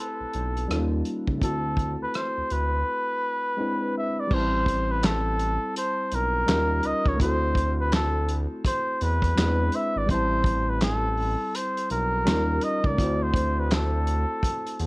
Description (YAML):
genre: R&B, neo-soul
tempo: 83 BPM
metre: 4/4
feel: swing 62% on 16ths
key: A dorian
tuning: A4 = 439 Hz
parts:
  - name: trumpet with cup mute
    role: melody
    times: 0.0-14.9 s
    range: A4 to E5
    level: -27 LUFS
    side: equal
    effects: plate reverb
  - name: tine electric piano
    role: accompaniment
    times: 0.0-14.9 s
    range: F#3 to A5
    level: -30 LUFS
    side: left 1 dB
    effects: plate reverb
  - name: smooth synth bass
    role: bass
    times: 0.2-14.9 s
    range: G#1 to E2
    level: -27 LUFS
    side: equal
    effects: none
  - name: warm soul drum kit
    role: drums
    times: 0.3-14.9 s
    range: crash cymbal, handclaps, hi-hat, kick drum, rim click, snare drum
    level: -26 LUFS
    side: equal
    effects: none
room: moderate studio reverb, RT60 0.6 s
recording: worn, warbling old tape, cassette tape, warbly pitch drift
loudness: -22 LUFS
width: side -24 dB against mid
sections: 0.0-4.3 A section; 4.3-14.9 B section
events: drums muted 2.9-4.3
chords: 0.0 Am9; 0.7 D#9; 1.4 D13; 3.6 E7b13; 4.3 Am9; 6.5 D#9; 7.2 D9; 9.4 E7b13; 10.1 Am9; 12.3 D#9; 13.0 D9